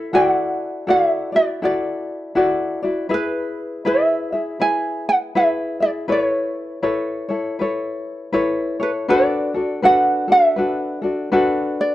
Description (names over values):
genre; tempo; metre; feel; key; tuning
Hawaiian; 80 BPM; 4/4; swing 62% on 8ths; A major; A4 = 440 Hz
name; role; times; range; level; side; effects
ukulele; melody; 0.0-11.9 s; B4 to G#5; -18 LUFS; right 1 dB; none
tenor ukulele; accompaniment; 0.0-11.9 s; D4 to E5; -20 LUFS; left 2 dB; none
room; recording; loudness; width
studio reverb; dry, close 1970s-style studio recording; -17 LUFS; side -14 dB against mid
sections
0.0-9.1 A section; 9.1-11.9 B section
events
none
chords
0.1 Dadd9; 3.1 E; 6.1 Aadd9; 9.1 D6